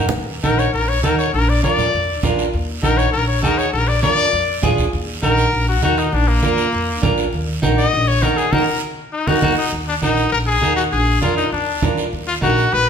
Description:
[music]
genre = latin, cumbia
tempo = 200 BPM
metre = 4/4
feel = straight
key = Eb harmonic minor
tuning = A4 = 440 Hz
[part]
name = clean electric guitar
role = accompaniment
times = 0.0-12.6 s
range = D4 to Bb4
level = -21 LUFS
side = right 3 dB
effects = none
[part]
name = upright bass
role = bass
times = 0.0-12.9 s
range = Bb1 to F2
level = -21 LUFS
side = equal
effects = none
[part]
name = congas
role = percussion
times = 0.1-12.9 s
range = none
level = -24 LUFS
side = right 2 dB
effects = none
[part]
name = guiro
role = percussion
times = 0.1-12.9 s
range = none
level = -30 LUFS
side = right 4 dB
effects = none
[part]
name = brilliant trumpet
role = melody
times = 0.4-12.9 s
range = Bb3 to Eb5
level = -19 LUFS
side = left 4 dB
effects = none
[sound]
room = wet large studio reverb, RT60 1.2 s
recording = band playing live in one room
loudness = -15 LUFS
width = side -7 dB against mid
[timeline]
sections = 0.1-9.7 A section; 9.7-12.9 B section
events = trumpet solo 0.1-9.7; band accent 8.5-9.7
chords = 0.1 Ebm; 1.3 Bb; 2.5 Ebm; 3.7 Bb7; 4.9 Ebm; 6.1 Bb; 7.3 Ebm; 10.9 Bb7; 12.1 Ebm

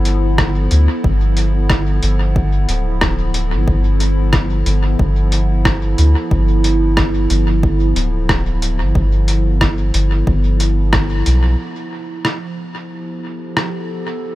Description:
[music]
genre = ambient dub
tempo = 91 BPM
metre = 4/4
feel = swing 58% on 16ths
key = G mixolydian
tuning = A4 = 439 Hz
[part]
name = warbly tape-like pad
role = sustained chords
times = 0.0-14.3 s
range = F3 to A4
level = -22 LUFS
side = right 1 dB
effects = chorus, built-in reverb, phaser
[part]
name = soft dub sub bass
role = bass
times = 0.0-11.6 s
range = D1 to D2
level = -15 LUFS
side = equal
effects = none
[part]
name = lo-fi sampler-style drum kit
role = drums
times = 0.1-13.7 s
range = hi-hat, rim click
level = -21 LUFS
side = equal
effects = overdrive, dub echo
[part]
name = electronic kick drum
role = drums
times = 0.4-11.1 s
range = none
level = -20 LUFS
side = equal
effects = overdrive
[sound]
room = digital ambience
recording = none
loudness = -13 LUFS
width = side -16 dB against mid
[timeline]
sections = 0.0-11.6 A section; 11.6-14.3 B section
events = band accent 10.9-11.3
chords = 0.0 G13

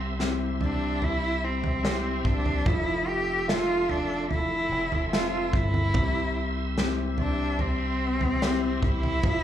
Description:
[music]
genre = pop ballad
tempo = 73 BPM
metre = 4/4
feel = straight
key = C major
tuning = A4 = 439 Hz
[part]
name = clear cello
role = melody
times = 0.0-9.4 s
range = C4 to G4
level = -28 LUFS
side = equal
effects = plate reverb, slapback echo
[part]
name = clear baby grand piano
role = accompaniment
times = 0.0-9.4 s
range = C3 to E5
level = -33 LUFS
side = left 3 dB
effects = plate reverb, slapback echo
[part]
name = bright tonewheel organ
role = sustained chords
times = 0.0-9.4 s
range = G4 to E6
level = -36 LUFS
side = right 1 dB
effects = overdrive, chorus vibrato, slow rotary speaker
[part]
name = fingered electric bass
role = bass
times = 0.0-9.4 s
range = F1 to C2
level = -30 LUFS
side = equal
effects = none
[part]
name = unplugged drum kit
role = drums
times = 0.2-9.4 s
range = kick drum, snare drum, toms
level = -29 LUFS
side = right 1 dB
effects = none
[sound]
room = light reverb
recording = live gig heard through the venue's PA, club reverb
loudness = -24 LUFS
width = side -10 dB against mid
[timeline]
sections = 0.0-9.4 A section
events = none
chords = 0.0 C; 2.7 Fmaj7; 5.9 C

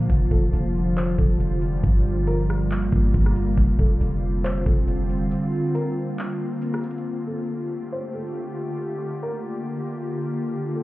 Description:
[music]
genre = hip hop, atmospheric cloud-rap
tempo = 138 BPM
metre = 4/4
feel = half-time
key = F major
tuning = A4 = 440 Hz
[part]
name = felt-muted upright piano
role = melody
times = 0.0-10.8 s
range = A4 to C5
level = -36 LUFS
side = equal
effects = tape echo
[part]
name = glassy FM pad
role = sustained chords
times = 0.0-10.8 s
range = D3 to G4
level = -26 LUFS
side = equal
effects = ensemble chorus, built-in reverb, sidechain pumping
[part]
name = warm 808-style bass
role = bass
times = 0.0-5.3 s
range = F1 to G1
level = -23 LUFS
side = equal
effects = none
[part]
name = trap drum kit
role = drums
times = 0.0-7.0 s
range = handclaps, hi-hat, kick drum, rim click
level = -22 LUFS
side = equal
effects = none
[sound]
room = little or no reverb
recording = heard muffled through a wall, club reverb, EQ, nothing above 10.8 kHz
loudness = -21 LUFS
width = side -18 dB against mid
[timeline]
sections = 0.0-7.1 A section; 7.1-10.8 B section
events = break 5.3-7.1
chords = 0.1 F69; 1.8 Gm7; 3.6 F69; 5.3 Bb; 7.1 F69; 8.8 Gm7

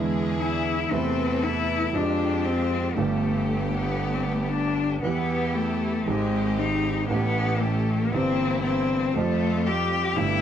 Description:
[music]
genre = tango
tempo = 117 BPM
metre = 4/4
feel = rubato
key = unclear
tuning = A4 = 440 Hz
[part]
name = warm cello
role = second line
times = 0.0-10.4 s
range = G#3 to G4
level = -26 LUFS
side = left 4 dB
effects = none
[part]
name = warm concert grand piano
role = accompaniment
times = 0.0-10.4 s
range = G1 to B4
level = -27 LUFS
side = right 4 dB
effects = none
[part]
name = clear symphonic string section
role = stabs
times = 0.0-10.4 s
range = G3 to B4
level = -33 LUFS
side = right 1 dB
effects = none
[part]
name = clear double bass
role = bass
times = 0.0-10.4 s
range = G1 to F2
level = -30 LUFS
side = right 1 dB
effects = none
[sound]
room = moderate large studio reverb, RT60 0.9 s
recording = none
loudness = -22 LUFS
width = side -9 dB against mid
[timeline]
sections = 0.0-10.4 A section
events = cello solo 0.0-10.4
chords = 0.0 E7; 0.9 Amadd9/E; 2.0 Fmadd9; 3.0 Gadd9; 5.0 Em; 6.1 Abmaj7; 7.1 A7; 8.1 C7/G; 9.2 Fsus2

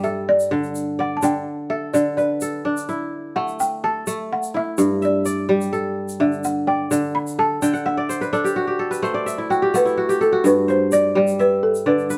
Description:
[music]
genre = west african traditional, West African string and xylophone music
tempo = 85 BPM (dotted quarters)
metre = 12/8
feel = straight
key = G major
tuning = A4 = 440 Hz
[part]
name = balafon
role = melody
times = 0.0-12.2 s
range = A4 to B5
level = -22 LUFS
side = equal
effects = none
[part]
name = kora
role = arpeggios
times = 0.0-12.2 s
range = G2 to G5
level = -23 LUFS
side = equal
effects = none
[part]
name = egg shaker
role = percussion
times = 0.0-12.2 s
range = none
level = -37 LUFS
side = equal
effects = none
[sound]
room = moderate stone room reverb, RT60 1.0 s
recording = band playing live in one room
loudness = -21 LUFS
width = mono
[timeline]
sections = 0.0-10.4 A section; 10.4-12.2 B section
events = balafon solo 0.0-10.4; kora fill 7.6-10.4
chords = 0.0 G5; 1.9 D5; 4.8 G5; 7.6 D; 10.4 G

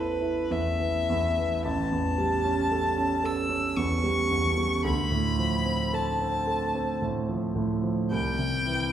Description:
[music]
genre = classical, romantic duo for violin and grand piano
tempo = 55 BPM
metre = 3/4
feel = rubato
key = A minor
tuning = A4 = 441 Hz
[part]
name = rich violin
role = melody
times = 0.0-8.9 s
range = B4 to E6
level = -28 LUFS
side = left 2 dB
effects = none
[part]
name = warm concert grand piano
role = accompaniment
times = 0.0-8.9 s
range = A1 to A4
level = -26 LUFS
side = right 2 dB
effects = none
[sound]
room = wet recital hall reverb, RT60 1.3 s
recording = heard from further back in the room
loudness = -24 LUFS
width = side -10 dB against mid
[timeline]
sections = 0.0-8.9 A section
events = none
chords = 0.0 A5; 1.7 A7; 4.8 Dm7; 8.1 C

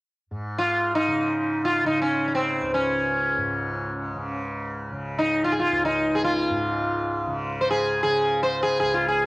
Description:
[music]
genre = indian classical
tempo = free time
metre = none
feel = none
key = Db raga hamsadhwani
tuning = A4 = 441 Hz
[part]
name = tanpura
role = drone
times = 0.3-9.3 s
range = Db2 to Db3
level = -30 LUFS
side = equal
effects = cassette tape
[part]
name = sitar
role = melody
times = 0.6-9.2 s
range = C4 to C5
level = -22 LUFS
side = equal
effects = cassette tape
[sound]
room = light reverb, small room ambience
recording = home recording on cassette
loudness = -22 LUFS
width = side -22 dB against mid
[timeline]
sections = 0.3-9.3 A section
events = none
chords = none

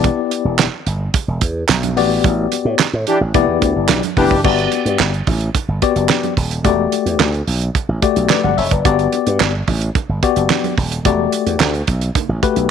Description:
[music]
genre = early-eighties boogie funk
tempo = 109 BPM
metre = 4/4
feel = straight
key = E minor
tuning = A4 = 440 Hz
[part]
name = tine electric piano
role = accompaniment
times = 0.0-12.7 s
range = A3 to F#5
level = -17 LUFS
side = left 11 dB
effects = overdrive, medium stereo tremolo
[part]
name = slap bass with an envelope filter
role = bass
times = 0.0-12.7 s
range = D#1 to A2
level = -19 LUFS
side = right 1 dB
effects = none
[part]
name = damped 70s drum kit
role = drums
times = 0.0-12.7 s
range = crash cymbal, handclaps, hi-hat, kick drum, snare drum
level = -18 LUFS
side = right 5 dB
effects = none
[part]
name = congas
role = percussion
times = 0.0-12.3 s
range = none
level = -27 LUFS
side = right 12 dB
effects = none
[part]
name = analog synth brass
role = second line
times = 3.1-4.4 s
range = E3 to G4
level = -17 LUFS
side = equal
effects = chorus
[sound]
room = small room ambience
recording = 1960s-style stereo with parts hard left and right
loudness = -14 LUFS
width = side -8 dB against mid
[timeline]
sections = 0.0-4.4 A section; 4.4-12.7 B section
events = band accent 2.2-4.4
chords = 0.0 Em7; 2.0 A13sus4; 3.3 Em7; 4.4 Gmaj7; 6.6 Em11; 8.8 Gmaj7; 11.1 Em11

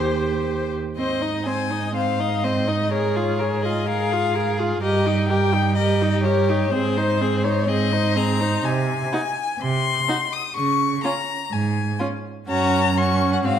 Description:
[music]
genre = quick classical-period movement for string quartet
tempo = 125 BPM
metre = 4/4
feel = straight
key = Ab major, Db major from 8.6 s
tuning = A4 = 442 Hz
[part]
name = clear violin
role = melody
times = 0.0-13.6 s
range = C5 to Eb6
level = -24 LUFS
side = left 7 dB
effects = none
[part]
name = rich violin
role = second line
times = 0.0-13.6 s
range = F4 to Eb5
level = -28 LUFS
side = left 3 dB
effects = none
[part]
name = rich viola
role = accompaniment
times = 0.0-13.6 s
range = C4 to Ab4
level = -25 LUFS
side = right 2 dB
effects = none
[part]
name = rich cello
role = bass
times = 0.0-13.6 s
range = Eb2 to Db3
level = -24 LUFS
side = right 4 dB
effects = none
[sound]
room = wet recital hall reverb, RT60 1.5 s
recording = none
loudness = -19 LUFS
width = side -9 dB against mid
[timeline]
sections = 1.0-13.6 A section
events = none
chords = 0.0 Eb; 1.0 Ab; 2.9 Bbm7/Ab; 4.8 Eb/G; 6.7 Ab; 8.6 Ab/C; 10.6 Db5; 12.5 Gb

